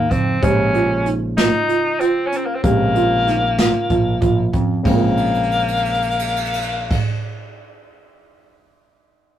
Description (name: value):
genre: progressive instrumental, band music in an uneven meter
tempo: 190 BPM (eighths)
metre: 7/8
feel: straight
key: Bb minor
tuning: A4 = 440 Hz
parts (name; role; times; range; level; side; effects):
- bright tenor saxophone; melody; 0.0-7.0 s; Bb3 to Eb4; -20 LUFS; left 2 dB; none
- dark concert grand piano; accompaniment; 0.0-7.0 s; Db3 to C5; -26 LUFS; left 1 dB; none
- picked electric bass; bass; 0.0-7.0 s; Bb1 to F2; -22 LUFS; equal; none
- folk marimba with medium mallets; arpeggios; 0.1-7.0 s; Db3 to Bb4; -21 LUFS; right 3 dB; none
- jazz brush drum kit; drums; 0.1-8.5 s; crash cymbal, hi-hat, kick drum, ride cymbal, snare drum; -21 LUFS; right 2 dB; none
room: moderate small room ambience, RT60 0.5 s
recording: rough rehearsal-room recording, tube saturation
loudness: -15 LUFS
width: side -11 dB against mid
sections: 0.0-4.8 A section; 4.8-7.1 B section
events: drum fill 5.2-6.9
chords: 0.4 Bbm7